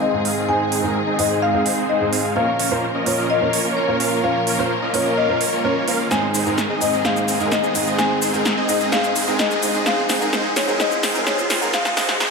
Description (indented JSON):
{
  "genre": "EDM, festival progressive house",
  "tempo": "128 BPM",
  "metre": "4/4",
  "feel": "straight",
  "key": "Ab major",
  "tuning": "A4 = 439 Hz",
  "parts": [
    { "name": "marimba with medium mallets", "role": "melody", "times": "0.0-12.3 s", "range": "Db5 to Ab5", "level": "-23 LUFS", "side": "left 4 dB", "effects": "dub echo" },
    { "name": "rich studio string section", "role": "sustained chords", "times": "0.0-12.3 s", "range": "Eb3 to Bb4", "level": "-27 LUFS", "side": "left 2 dB", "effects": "none" },
    { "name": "supersaw chords", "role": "riff", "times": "0.0-12.3 s", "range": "Ab3 to F5", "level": "-22 LUFS", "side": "right 1 dB", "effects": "low-pass filter" },
    { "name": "riser and noise sweep", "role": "sound effects", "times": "0.6-12.3 s", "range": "none", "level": "-30 LUFS", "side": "equal", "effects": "none" },
    { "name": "dark baby grand piano", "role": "accompaniment", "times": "0.1-12.3 s", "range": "Ab2 to Bb4", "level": "-25 LUFS", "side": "right 3 dB", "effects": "none" },
    { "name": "big-room dance drum kit", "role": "drums", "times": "0.3-12.3 s", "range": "hi-hat, shaker, snare drum", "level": "-23 LUFS", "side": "right 1 dB", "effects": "overdrive" }
  ],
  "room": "moderate huge ambient reverb, RT60 4.6 s",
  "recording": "high-pass filter",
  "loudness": "-17 LUFS",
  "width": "side -4 dB against mid",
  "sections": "0.0-12.3 A section",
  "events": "build-up 0.0-12.3; filter sweep on supersaw synth 0.0-12.3; filter sweep 0.0-12.3; riser 0.6-12.3; drum fill 6.1-12.3; noise sweep 11.7-12.3",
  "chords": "0.0 Ab; 2.4 Bbm; 6.1 Ab",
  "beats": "0.02 | 0.48 0.95 1.42 1.89 | 2.36 2.83 3.30 3.77 | 4.24 4.70 5.17 5.64 | 6.11 6.58 7.05 7.52 | 7.99 8.45 8.92 9.39 | 9.86 10.33 10.80 11.27 | 11.73 12.20"
}